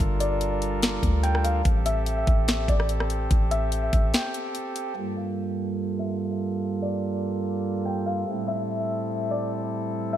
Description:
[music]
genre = hip hop, atmospheric cloud-rap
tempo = 145 BPM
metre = 4/4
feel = half-time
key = G dorian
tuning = A4 = 440 Hz
[part]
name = pipe organ, principal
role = sustained chords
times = 0.0-10.2 s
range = G2 to Bb4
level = -28 LUFS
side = right 2 dB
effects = sidechain pumping, low-pass filter
[part]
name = soft 808-style bass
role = bass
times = 0.0-4.1 s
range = G1 to D2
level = -25 LUFS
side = equal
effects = none
[part]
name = trap drum kit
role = drums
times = 0.0-4.9 s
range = hi-hat, kick drum, rim click, snare drum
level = -24 LUFS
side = equal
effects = none
[part]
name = felt-muted upright piano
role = melody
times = 0.2-10.2 s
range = D5 to G5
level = -31 LUFS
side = left 1 dB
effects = low-pass filter, digital delay
[sound]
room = moderate lush hall reverb, RT60 2.0 s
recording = bright 1980s-style digital production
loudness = -23 LUFS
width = side -11 dB against mid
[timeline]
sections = 0.0-5.0 A section; 5.0-10.2 B section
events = break 4.1-5.0; filter sweep 5.0-10.2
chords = 0.0 Gm7; 1.7 Am7; 5.0 Gm7; 8.3 Am7

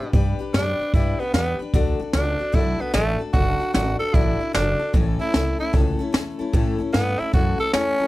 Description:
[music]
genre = rockabilly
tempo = 150 BPM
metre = 4/4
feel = swing 65% on 8ths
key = D major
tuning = A4 = 444 Hz
[part]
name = growling tenor saxophone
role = melody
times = 0.0-8.1 s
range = D3 to A4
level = -24 LUFS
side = right 1 dB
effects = none
[part]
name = picked steel-string acoustic guitar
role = accompaniment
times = 0.0-8.1 s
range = A2 to B4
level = -27 LUFS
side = left 4 dB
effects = none
[part]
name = upright bass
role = bass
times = 0.1-8.0 s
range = F#1 to A2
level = -25 LUFS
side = equal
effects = none
[part]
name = jazz brush drum kit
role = drums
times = 0.1-7.9 s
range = hi-hat, kick drum, snare drum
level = -21 LUFS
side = equal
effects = none
[sound]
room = little or no reverb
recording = none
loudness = -19 LUFS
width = side -17 dB against mid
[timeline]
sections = 0.0-8.1 A section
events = none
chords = 0.0 G; 1.7 D; 4.9 A

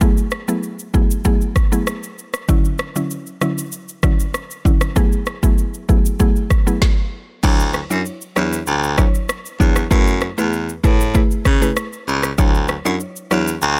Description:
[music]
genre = afrobeats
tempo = 97 BPM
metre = 4/4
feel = straight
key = unclear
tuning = A4 = 436 Hz
[part]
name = mallet-like synth pluck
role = accompaniment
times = 0.0-13.5 s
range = D3 to C#5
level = -24 LUFS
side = equal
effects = chorus
[part]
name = afro-pop drum kit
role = drums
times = 0.0-13.8 s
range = crash cymbal, kick drum, rim click, shaker, snare drum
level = -19 LUFS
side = equal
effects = none
[part]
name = growling baritone saxophone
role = bass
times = 7.4-13.8 s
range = C#2 to C#3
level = -21 LUFS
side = equal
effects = none
[sound]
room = digital ambience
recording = none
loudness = -18 LUFS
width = mono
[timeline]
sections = 0.0-7.4 A section; 7.4-13.8 B section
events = stop 6.8-7.4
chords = 0.0 F#m11; 2.5 Dmaj9; 5.0 F#m11; 7.4 Dmaj9; 9.9 F#m11; 12.4 Dmaj9

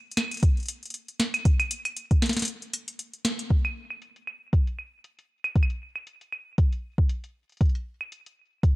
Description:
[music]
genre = IDM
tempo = 117 BPM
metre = 4/4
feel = swing 56% on 16ths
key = none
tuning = none
[part]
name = booming analog drum machine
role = drums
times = 0.1-8.7 s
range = claves, hi-hat, snare drum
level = -28 LUFS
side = equal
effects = low-pass filter on hats, low-pass filter on snare, low-pass filter on perc
[part]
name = electronic kick drum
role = drums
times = 0.4-8.7 s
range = none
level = -21 LUFS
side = equal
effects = none
[sound]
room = little or no reverb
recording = dry, gritty hardware recording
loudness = -24 LUFS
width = side -21 dB against mid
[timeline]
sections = 0.0-3.5 A section; 3.5-8.8 B section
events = break 2.5-3.5; band accent 3.2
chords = none

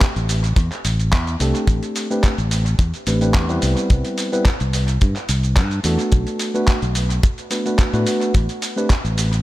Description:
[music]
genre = nu-disco, nu disco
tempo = 108 BPM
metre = 4/4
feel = straight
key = A dorian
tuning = A4 = 440 Hz
[part]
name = tine electric piano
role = accompaniment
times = 0.0-8.9 s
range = G3 to B4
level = -23 LUFS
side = equal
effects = sidechain pumping, dub echo
[part]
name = dusty soul sampler-style drum kit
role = drums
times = 0.0-9.4 s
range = handclaps, hi-hat, shaker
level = -26 LUFS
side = right 1 dB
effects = overdrive, dub echo
[part]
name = kick drum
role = drums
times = 0.0-9.0 s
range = none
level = -16 LUFS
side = equal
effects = none
[part]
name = fingered electric bass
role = bass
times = 0.2-9.4 s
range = A1 to A2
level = -19 LUFS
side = equal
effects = sidechain pumping
[sound]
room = light reverb, digital ambience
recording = echo-heavy mix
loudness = -16 LUFS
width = side -16 dB against mid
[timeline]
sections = 0.0-9.4 A section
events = none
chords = 0.0 Am11; 3.6 Cmaj7; 6.1 Bm7; 8.3 Am11

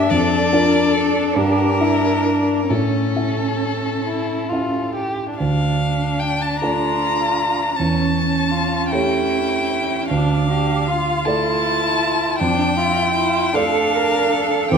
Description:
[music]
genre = classical, slow romantic movement for piano quartet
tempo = 44-53 BPM (dotted quarters)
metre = 6/8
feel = rubato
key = D minor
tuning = A4 = 440 Hz
[part]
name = warm violin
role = melody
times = 0.0-14.8 s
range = A4 to Bb5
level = -22 LUFS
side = left 4 dB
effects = none
[part]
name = warm cello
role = second line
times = 0.0-14.8 s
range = C#4 to Bb4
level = -24 LUFS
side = right 7 dB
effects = none
[part]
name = warm violin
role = second line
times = 0.0-14.8 s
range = C4 to G4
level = -23 LUFS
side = left 1 dB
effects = none
[part]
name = dark concert grand piano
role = accompaniment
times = 0.0-14.8 s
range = D2 to E5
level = -20 LUFS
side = right 1 dB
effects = none
[sound]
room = moderate concert hall reverb, RT60 1.8 s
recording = minimal, uncompressed stereo recording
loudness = -16 LUFS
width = side -6 dB against mid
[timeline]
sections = 0.0-5.4 A section; 5.4-14.8 B section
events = none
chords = 0.1 Dm/F; 1.4 Em7b5/G; 2.7 A; 5.4 Dm; 7.8 A7/E; 10.1 Dm; 12.4 Dm/F

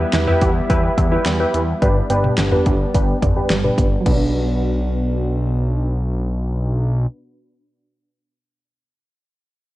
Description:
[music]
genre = synth-pop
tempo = 107 BPM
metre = 4/4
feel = straight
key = B minor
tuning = A4 = 440 Hz
[part]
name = funky polysynth comp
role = accompaniment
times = 0.0-7.1 s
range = D4 to B4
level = -23 LUFS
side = equal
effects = chorus, low-pass filter
[part]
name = lush unison pad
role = sustained chords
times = 0.0-7.1 s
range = B2 to F#5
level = -25 LUFS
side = equal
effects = chorus, low-pass filter
[part]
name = analog pluck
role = arpeggios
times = 0.0-7.8 s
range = F#3 to E5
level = -27 LUFS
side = right 3 dB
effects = chorus, low-pass filter, ping-pong delay
[part]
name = fat analog bass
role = bass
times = 0.0-7.1 s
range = G1 to E2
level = -20 LUFS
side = equal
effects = none
[part]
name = pop drum kit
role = drums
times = 0.1-4.2 s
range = crash cymbal, hi-hat, kick drum, snare drum, toms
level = -19 LUFS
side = equal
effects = none
[sound]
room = moderate recital hall reverb, RT60 1.7 s, digital ambience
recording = worn, warbling old tape, cassette tape, warbly pitch drift, nothing above 10.5 kHz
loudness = -16 LUFS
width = side -16 dB against mid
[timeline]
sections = 0.0-4.1 A section; 4.1-6.3 B section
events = filter sweep 0.0-4.1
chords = 0.0 Em; 1.8 G; 4.1 Bm

